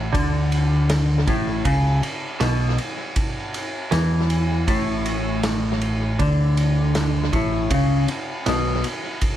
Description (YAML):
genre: psychedelic rock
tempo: 79 BPM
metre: 4/4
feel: straight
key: A major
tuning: A4 = 440 Hz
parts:
  - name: direct-recorded clean electric guitar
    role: riff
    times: 0.0-8.8 s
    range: A2 to E3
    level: -21 LUFS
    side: equal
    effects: phaser, double-tracked left and right
  - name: picked electric bass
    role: bass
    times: 0.0-8.8 s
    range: A1 to E2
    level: -25 LUFS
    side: equal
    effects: none
  - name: vintage drum kit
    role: drums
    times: 0.1-9.4 s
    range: kick drum, ride cymbal, snare drum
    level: -25 LUFS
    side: equal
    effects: tape echo
room: light reverb, small room ambience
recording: echo-heavy mix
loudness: -19 LUFS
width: side -12 dB against mid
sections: 0.0-9.4 A section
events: none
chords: 0.0 Asus4